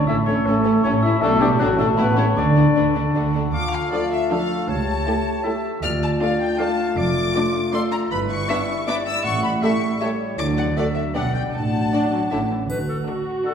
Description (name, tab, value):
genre	cinematic, playful, whimsical film cue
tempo	158 BPM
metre	3/4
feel	straight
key	D major, D minor from 3.5 s, D major from 8.1 s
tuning	A4 = 443 Hz
part	glockenspiel with soft plastic mallets	melody	0.0-3.1 s	G5 to F#6	-26 LUFS	left 3 dB	none
part	warm French horn section	sustained chords	0.0-12.5 s	E3 to G4	-24 LUFS	left 3 dB	none
part	warm studio cello section	bass	0.0-13.0 s	C#2 to D3	-26 LUFS	right 2 dB	none
part	warm studio double bass section	bass	0.0-13.0 s	F1 to D2	-26 LUFS	right 3 dB	none
part	warm studio violin section	melody	0.1-13.5 s	E4 to F6	-28 LUFS	left 3 dB	none
part	clear clarinet	second line	0.1-13.5 s	F4 to F#5	-27 LUFS	left 1 dB	none
part	rich studio violin section	second line	0.1-13.5 s	C#4 to E5	-30 LUFS	left 2 dB	none
part	warm studio viola section	accompaniment	0.1-13.5 s	D3 to G4	-27 LUFS	right 2 dB	none
part	triangle	percussion	12.7-13.4 s	none	-43 LUFS	equal	none
room	wet scoring stage reverb, RT60 1.6 s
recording	heard from further back in the room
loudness	-18 LUFS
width	side -7 dB against mid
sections	0.0-3.5 A section; 3.5-12.7 B section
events	none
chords	0.1 A; 1.2 G/B; 1.6 D/A (rootless); 2.0 A7; 2.4 D; 3.5 Dm; 4.7 A7/C#; 5.8 Dm; 7.0 Dm/F; 8.1 Em7/G; 9.2 A7; 10.4 D; 11.1 G/B; 11.5 D/A; 12.3 A; 12.7 D